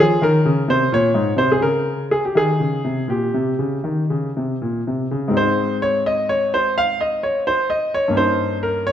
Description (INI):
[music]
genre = classical, baroque-style suite movement for grand piano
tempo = 79-88 BPM (dotted quarters)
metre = 12/8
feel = rubato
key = Ab major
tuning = A4 = 439 Hz
[part]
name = clear grand piano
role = solo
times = 0.0-8.9 s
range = G2 to F5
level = -17 LUFS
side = equal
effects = none
[sound]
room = moderate recital hall reverb, RT60 1.4 s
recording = none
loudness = -17 LUFS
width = side -9 dB against mid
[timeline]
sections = 0.0-5.3 A section; 5.3-8.9 B section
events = none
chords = 0.0 Db5; 2.3 Eb; 5.3 Ab; 8.2 Eb7/G